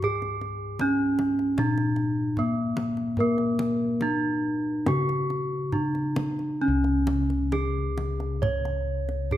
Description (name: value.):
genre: Javanese gamelan.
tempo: 67-79 BPM.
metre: 4/4.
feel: straight.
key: C# pelog barang.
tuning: A4 = 440 Hz.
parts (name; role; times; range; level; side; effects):
gamelan-type bronze metallophone; melody; 0.0-9.4 s; A#3+20c to C#5; -26 LUFS; right 1 dB; none.
gamelan-type bossed gongs; bass; 0.0-9.4 s; C#2 to A#4+20c; -29 LUFS; left 2 dB; none.
kendang; percussion; 0.0-9.4 s; none; -33 LUFS; equal; none.
room: moderate recital hall reverb, RT60 1.6 s.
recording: none.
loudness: -24 LUFS.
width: side -12 dB against mid.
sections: 0.0-6.6 A section; 6.6-9.4 B section.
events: none.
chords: none.